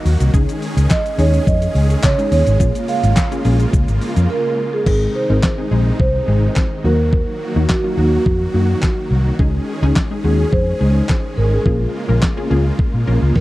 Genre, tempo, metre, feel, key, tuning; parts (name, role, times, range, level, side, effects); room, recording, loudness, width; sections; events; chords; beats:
dance-pop; 106 BPM; 4/4; straight; Bb minor; A4 = 441 Hz
supersaw chords; sustained chords; 0.0-13.4 s; C3 to Ab4; -25 LUFS; equal; sidechain pumping
vintage muted fingered electric bass; bass; 0.1-13.4 s; Ab1 to Db3; -15 LUFS; equal; sidechain pumping
dusty soul sampler-style drum kit; drums; 0.1-13.4 s; crash cymbal, handclaps, hi-hat, kick drum, shaker, snare drum; -17 LUFS; equal; overdrive
wide unison pluck; accompaniment; 0.3-13.4 s; Gb3 to Bb4; -23 LUFS; left 2 dB; sidechain pumping
marimba with soft mallets; melody; 0.9-13.4 s; Gb4 to F5; -22 LUFS; right 3 dB; slapback echo
group handclap; percussion; 0.9-3.3 s; -32 LUFS; left 3 dB
little or no reverb; dry, close 1970s-style studio recording; -14 LUFS; side -17 dB against mid
0.0-4.9 A section; 4.9-13.4 B section
break 4.3-4.9
0.3 Dbsus2; 2.6 Bbm7; 4.9 Ab; 6.8 Ebm; 9.4 Dbsus2; 11.7 Bbm7
| 0.34 0.90 1.47 2.03 | 2.60 3.17 3.73 4.30 | 4.86 5.43 6.00 6.56 | 7.13 7.70 8.26 8.83 | 9.39 9.96 10.53 11.09 | 11.66 12.22 12.79 13.36